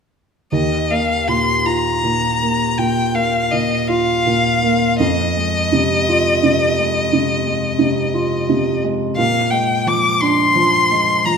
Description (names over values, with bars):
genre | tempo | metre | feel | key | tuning
classical, impressionist duo for violin and grand piano | 52-60 BPM (dotted quarters) | 12/8 | rubato | Eb major | A4 = 439 Hz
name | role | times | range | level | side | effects
rich violin | melody | 0.5-11.4 s | Eb5 to D6 | -17 LUFS | left 3 dB | none
warm baby grand piano | accompaniment | 0.5-11.4 s | Eb2 to F4 | -17 LUFS | right 2 dB | none
room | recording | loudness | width
wet recital hall reverb, RT60 1.5 s | minimal, uncompressed stereo recording | -14 LUFS | side -6 dB against mid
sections
0.5-11.4 A section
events
none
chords
0.5 Ebsus2; 5.0 Fm7; 9.2 Bb9